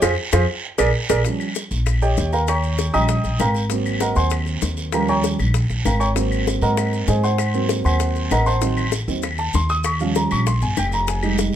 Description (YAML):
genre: Afro-Cuban jazz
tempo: 195 BPM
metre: 4/4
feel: straight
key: unclear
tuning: A4 = 444 Hz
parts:
  - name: warm baby grand piano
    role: accompaniment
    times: 0.0-11.6 s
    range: Eb3 to Eb6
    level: -21 LUFS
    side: right 2 dB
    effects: none
  - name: upright bass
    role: bass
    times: 0.0-11.5 s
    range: F1 to Ab2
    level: -21 LUFS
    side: equal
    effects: none
  - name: bongos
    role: percussion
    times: 0.0-11.5 s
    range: none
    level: -26 LUFS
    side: left 10 dB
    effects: none
  - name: claves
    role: percussion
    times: 0.0-11.4 s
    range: none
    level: -31 LUFS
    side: left 4 dB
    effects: none
  - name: guiro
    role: percussion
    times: 0.0-11.6 s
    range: none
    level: -32 LUFS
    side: right 6 dB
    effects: none
  - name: maracas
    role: percussion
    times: 0.0-11.5 s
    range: none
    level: -34 LUFS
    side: left 11 dB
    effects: none
room: light reverb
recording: close, detailed microphones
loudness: -18 LUFS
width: side -10 dB against mid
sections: 0.0-1.2 A section; 1.2-11.6 A section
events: grand piano solo 0.0-11.6; band accent 0.0-1.2; drum fill 0.6-1.2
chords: 0.0 Fm; 0.6 Bb7; 1.2 Eb9; 3.7 Ab9; 4.9 Eb9; 6.2 Ab9; 8.6 Adim7; 9.8 Eb9